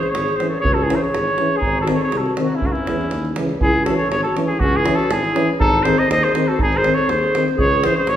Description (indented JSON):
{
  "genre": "balkan folk, Balkan brass band",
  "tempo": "121 BPM",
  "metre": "2/4",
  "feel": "straight",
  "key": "C# harmonic minor",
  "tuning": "A4 = 440 Hz",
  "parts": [
    { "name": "warm trumpet", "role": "melody", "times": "0.0-8.2 s", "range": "E4 to D#5", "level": "-20 LUFS", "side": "equal", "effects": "none" },
    { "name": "mellow clarinet", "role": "second line", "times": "0.0-8.2 s", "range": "C#4 to B#4", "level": "-24 LUFS", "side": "left 2 dB", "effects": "none" },
    { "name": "davul", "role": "percussion", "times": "0.0-8.2 s", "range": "none", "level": "-25 LUFS", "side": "right 1 dB", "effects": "none" },
    { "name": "mellow tuba", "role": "bass", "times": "0.1-8.2 s", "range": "G#1 to E2", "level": "-24 LUFS", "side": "equal", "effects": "none" },
    { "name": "dark euphonium", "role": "accompaniment", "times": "0.4-7.9 s", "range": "B#3 to C#4", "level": "-25 LUFS", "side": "left 4 dB", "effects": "none" },
    { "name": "mellow trombone", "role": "accompaniment", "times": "0.4-7.9 s", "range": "D#3 to E3", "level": "-26 LUFS", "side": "right 3 dB", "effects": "none" }
  ],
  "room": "wet recital hall reverb, RT60 1.5 s",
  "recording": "recorded in a church or concert hall",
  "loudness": "-16 LUFS",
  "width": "side -10 dB against mid",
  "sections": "0.0-3.6 A section; 3.6-8.2 A section",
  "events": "none",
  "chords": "0.0 C#m; 1.6 G#; 2.6 C#m; 5.6 G#; 7.6 C#m"
}